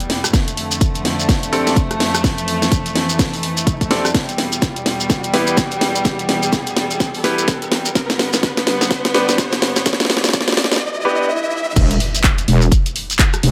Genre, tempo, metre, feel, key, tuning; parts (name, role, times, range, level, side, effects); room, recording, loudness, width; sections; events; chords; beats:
bass house; 126 BPM; 4/4; swing 60% on 16ths; A4 = 440 Hz
dark studio string section; sustained chords; 0.0-10.8 s; E2 to B3; -25 LUFS; equal; sidechain pumping
house drum kit; drums; 0.0-13.5 s; crash cymbal, handclaps, hi-hat, rim click, snare drum; -21 LUFS; equal
shekere; percussion; 0.0-13.4 s; -26 LUFS; equal
riser, swell and impact; sound effects; 0.5-13.5 s; -29 LUFS; equal
electronic kick drum; drums; 0.3-13.3 s; -19 LUFS; equal
bright grand piano; stabs; 1.5-11.3 s; B3 to B4; -24 LUFS; equal; sidechain pumping, dub echo
wobble bass; bass; 11.8-13.5 s; E1; -15 LUFS; equal; chorus, overdrive, sidechain pumping
light reverb; high-pass filter; -17 LUFS; mono
0.0-11.8 A section; 11.8-13.5 B section
build-up 0.0-11.8; drum fill 0.0-10.8; riser 0.5-11.8; break 10.8-11.8; swell 10.8-11.8; drop 11.8-13.5; impact 11.8-13.5
0.3 F6; 4.1 Em; 8.0 G; 11.8 N.C.
| 0.34 0.81 1.29 1.76 | 2.24 2.72 3.19 3.67 | 4.14 4.62 5.10 5.57 | 6.05 6.53 7.00 7.48 | 7.96 8.43 8.91 9.38 | 9.86 10.34 10.81 11.29 | 11.76 12.24 12.72 13.19